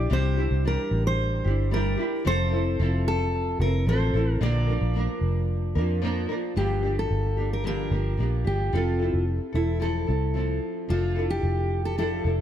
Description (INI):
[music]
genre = acoustic pop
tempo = 111 BPM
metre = 4/4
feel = straight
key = unclear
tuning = A4 = 443 Hz
[part]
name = fingerpicked steel-string acoustic guitar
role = melody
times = 0.0-12.4 s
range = E4 to D5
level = -30 LUFS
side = equal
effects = analog delay
[part]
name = nylon-string guitar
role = accompaniment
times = 0.0-12.4 s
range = G2 to Bb4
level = -29 LUFS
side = equal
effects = double-tracked left and right
[part]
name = vintage muted fingered electric bass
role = bass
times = 0.0-12.4 s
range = E1 to F2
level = -25 LUFS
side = equal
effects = none
[sound]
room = light reverb, studio reverb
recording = none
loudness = -23 LUFS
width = side -10 dB against mid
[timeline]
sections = 0.0-6.6 A section; 6.6-12.4 B section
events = none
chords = 0.0 Cadd9; 2.3 Fmaj7; 4.4 Bb; 6.6 Gm7; 8.7 Fmaj7; 10.9 Dmadd9/F